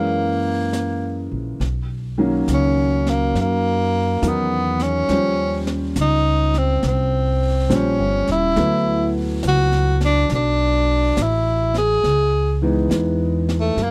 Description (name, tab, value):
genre	jazz ballad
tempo	69 BPM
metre	4/4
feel	swing 66% on 8ths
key	B major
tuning	A4 = 442 Hz
part	clear tenor saxophone	melody	0.0-13.9 s	A3 to G#4	-22 LUFS	equal	none
part	warm upright piano	accompaniment	0.0-13.8 s	D#3 to B#4	-25 LUFS	equal	none
part	upright bass	bass	0.0-13.9 s	D#1 to F#2	-24 LUFS	equal	none
part	jazz brush drum kit	drums	0.7-13.9 s	brushed snare drum, hi-hat, snare drum	-32 LUFS	equal	none
room	small room ambience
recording	dry, close 1970s-style studio recording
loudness	-19 LUFS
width	mono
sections	0.0-1.6 A section; 1.6-13.9 B section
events	tenor saxophone solo 1.6-13.9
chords	0.0 F#7; 1.6 Bmaj9; 5.1 D#13; 8.6 D69; 12.0 C#m7